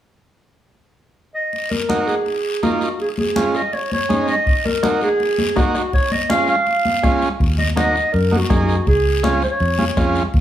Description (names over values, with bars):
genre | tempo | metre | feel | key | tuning
latin, cumbia | 163 BPM | 4/4 | straight | Eb minor | A4 = 436 Hz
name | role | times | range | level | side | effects
mellow clarinet | melody | 1.3-10.1 s | Gb4 to F5 | -20 LUFS | equal | none
congas | percussion | 1.5-10.4 s | none | -24 LUFS | left 2 dB | none
guiro | percussion | 1.5-10.4 s | none | -31 LUFS | left 4 dB | none
combo organ | accompaniment | 1.9-10.2 s | Ab3 to Ab4 | -22 LUFS | right 3 dB | none
bombo | percussion | 4.5-10.4 s | none | -20 LUFS | equal | none
fingered electric bass | bass | 7.4-10.4 s | Db2 to Gb2 | -19 LUFS | equal | none
room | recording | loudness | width
moderate large studio reverb, RT60 1.1 s | small room ambience | -16 LUFS | side -11 dB against mid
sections
0.1-1.5 A section; 1.5-7.4 B section; 7.4-10.4 C section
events
none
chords
0.1 N.C.; 1.5 Ebm; 3.0 Db; 4.5 Ebm; 5.9 Db; 7.4 Ebm; 8.9 Db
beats
| 0.06 0.43 0.79 1.16 | 1.53 1.90 2.26 2.63 | 3.00 3.36 3.73 4.10 | 4.46 4.83 5.20 5.57 | 5.93 6.30 6.67 7.04 | 7.40 7.77 8.14 8.50 | 8.87 9.24 9.60 9.97 | 10.34